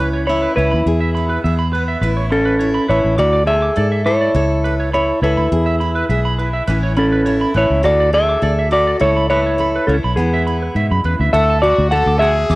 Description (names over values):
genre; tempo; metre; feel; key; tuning
highlife; 103 BPM; 4/4; straight; A major; A4 = 440 Hz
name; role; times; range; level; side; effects
semi-hollow electric guitar; melody; 0.0-12.6 s; B3 to F#5; -16 LUFS; equal; none
picked steel-string acoustic guitar; accompaniment; 0.0-12.6 s; E2 to A4; -26 LUFS; left 3 dB; cassette tape
electric guitar at the edge of break-up; arpeggios; 0.0-12.6 s; B4 to D6; -23 LUFS; right 3 dB; cassette tape, analog delay
fingered electric bass; bass; 0.0-12.6 s; A1 to G#2; -18 LUFS; equal; none
brilliant trumpet; second line; 11.3-12.6 s; F#4 to A4; -24 LUFS; left 2 dB; cassette tape
room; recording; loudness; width
light reverb, studio ambience; home recording on cassette; -13 LUFS; side -20 dB against mid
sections
0.0-11.3 A section; 11.3-12.6 B section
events
none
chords
0.0 C#m9; 0.9 E; 2.0 Aadd9; 3.2 Dadd9; 4.3 Aadd9/C#; 5.5 E; 6.7 Aadd9; 7.8 Dadd9; 9.0 Aadd9/C#; 10.2 E; 11.3 D